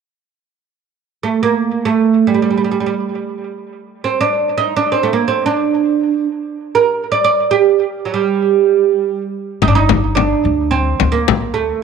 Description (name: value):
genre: Arabic maqam ensemble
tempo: free time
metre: none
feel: none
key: G minor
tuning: A4 = 444 Hz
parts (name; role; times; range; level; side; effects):
- oud; melody; 1.2-11.8 s; F#3 to D5; -14 LUFS; right 6 dB; tape echo
- upright bass; bass; 9.6-11.7 s; G1 to D2; -18 LUFS; left 2 dB; none
- frame drum; percussion; 9.6-11.4 s; none; -16 LUFS; left 10 dB; none
room: light reverb, small room ambience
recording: 1960s-style stereo with parts hard left and right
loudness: -13 LUFS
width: side -6 dB against mid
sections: 0.8-9.6 A section; 9.6-11.8 B section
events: none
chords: none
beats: free time